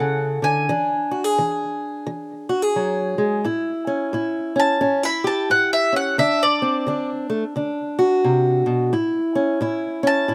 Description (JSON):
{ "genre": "acoustic country blues, solo or duo", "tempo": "87 BPM", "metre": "4/4", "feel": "swing 62% on 8ths", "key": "A major", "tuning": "A4 = 440 Hz", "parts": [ { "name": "bowl-back mandolin", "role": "melody", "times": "0.0-10.3 s", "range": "D5 to B5", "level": "-22 LUFS", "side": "equal", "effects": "none" }, { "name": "fingerpicked acoustic archtop guitar", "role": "accompaniment", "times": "0.0-10.3 s", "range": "A2 to A4", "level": "-22 LUFS", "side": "equal", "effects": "none" } ], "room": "little or no reverb", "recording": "recorded outdoors, with no room sound", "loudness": "-21 LUFS", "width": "mono", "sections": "0.0-3.4 A section; 3.4-10.3 B section", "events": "mandolin solo 3.4-10.3", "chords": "0.0 A; 0.7 E7; 3.4 A7; 6.2 D7; 8.9 A", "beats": "| 0.68 1.37 2.06 2.75 | 3.44 4.13 4.82 5.51 | 6.19 6.88 7.57 8.25 | 8.93 9.62 10.30" }